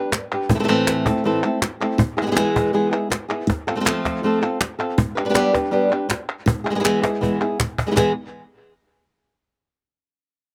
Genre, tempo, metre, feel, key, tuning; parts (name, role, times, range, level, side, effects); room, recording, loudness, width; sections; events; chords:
flamenco; 161 BPM; 4/4; straight; E phrygian dominant; A4 = 439 Hz
flamenco guitar; melody; 0.0-8.1 s; A2 to B4; -22 LUFS; equal
cajon; percussion; 0.1-8.1 s; -26 LUFS; equal
palmas hand claps; percussion; 0.1-8.1 s; -28 LUFS; equal
little or no reverb; recorded outdoors, with no room sound; -21 LUFS; mono
0.0-8.0 A section; 8.0-9.5 B section
drum fill 6.8-8.0
0.5 Am; 2.0 E; 3.5 F; 5.0 G; 6.5 E; 8.0 N.C.